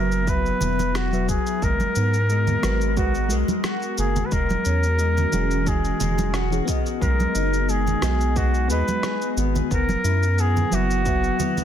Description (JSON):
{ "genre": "sunset chillout", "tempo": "89 BPM", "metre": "4/4", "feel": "swing 54% on 16ths", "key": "B major", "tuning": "A4 = 442 Hz", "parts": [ { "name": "warm flugelhorn", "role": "melody", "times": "0.0-11.6 s", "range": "F#4 to B4", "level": "-26 LUFS", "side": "equal", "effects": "ping-pong delay" }, { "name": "mellow FM electric piano", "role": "accompaniment", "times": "0.0-11.6 s", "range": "E3 to E5", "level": "-28 LUFS", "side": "moving between left 7 dB and right 4 dB", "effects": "chorus, auto-pan, digital delay" }, { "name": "ethereal airy pad", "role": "sustained chords", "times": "0.0-11.6 s", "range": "E3 to A#5", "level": "-30 LUFS", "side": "left 2 dB", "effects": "ensemble chorus, built-in reverb" }, { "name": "round analog bass", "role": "bass", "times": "0.0-11.3 s", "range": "E1 to G#2", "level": "-23 LUFS", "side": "equal", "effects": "none" }, { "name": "electronic shaker and rim click", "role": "drums", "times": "0.1-11.6 s", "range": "none", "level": "-32 LUFS", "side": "equal", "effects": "soft clipping on snare" }, { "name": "electronic kick drum", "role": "drums", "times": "0.3-11.2 s", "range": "none", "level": "-25 LUFS", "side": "equal", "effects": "none" }, { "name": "congas", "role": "percussion", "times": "0.6-11.6 s", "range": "none", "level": "-30 LUFS", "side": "right 4 dB", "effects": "none" }, { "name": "electric guitar at the edge of break-up", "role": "arpeggios", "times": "1.6-11.6 s", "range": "G#3 to G#4", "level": "-31 LUFS", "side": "left 2 dB", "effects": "digital delay" } ], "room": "little or no reverb", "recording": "dense, heavily limited modern master", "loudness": "-19 LUFS", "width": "side -10 dB against mid", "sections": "0.0-11.6 A section", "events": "none", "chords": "0.0 F#7sus4; 1.6 G#m9; 4.3 E69; 6.7 B6; 9.7 F#7sus4", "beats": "0.28 0.95 | 1.62 2.30 2.97 3.65 | 4.32 4.99 5.67 6.34 | 7.02 7.69 8.37 9.04 | 9.71 10.39 11.06" }